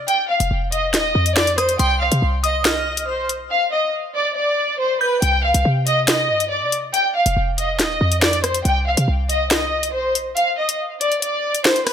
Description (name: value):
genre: hip hop, drill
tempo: 140 BPM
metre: 4/4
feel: half-time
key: C harmonic minor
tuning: A4 = 440 Hz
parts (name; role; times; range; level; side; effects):
- short 808-style bass; bass; 0.0-10.3 s; Eb1 to C3; -22 LUFS; equal; none
- warm symphonic violin section; melody; 0.1-11.9 s; B4 to G5; -19 LUFS; equal; low-pass filter, ping-pong delay
- drill drum kit; drums; 0.1-11.9 s; finger snaps, hi-hat, rim click, snare drum; -19 LUFS; equal; none
- glassy synth bell; second line; 1.6-5.2 s; C6 to G6; -26 LUFS; right 1 dB; chorus, phaser, ping-pong delay
room: light reverb, digital ambience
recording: none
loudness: -16 LUFS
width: side -8 dB against mid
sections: 0.0-5.2 A section; 5.2-11.9 A section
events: drums muted 3.5-5.2; kick muted 10.4-11.9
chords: 0.1 Ebsus2; 1.8 Cm; 3.5 N.C.; 5.2 Cm; 6.9 Ebsus2; 8.7 Cm; 10.4 N.C.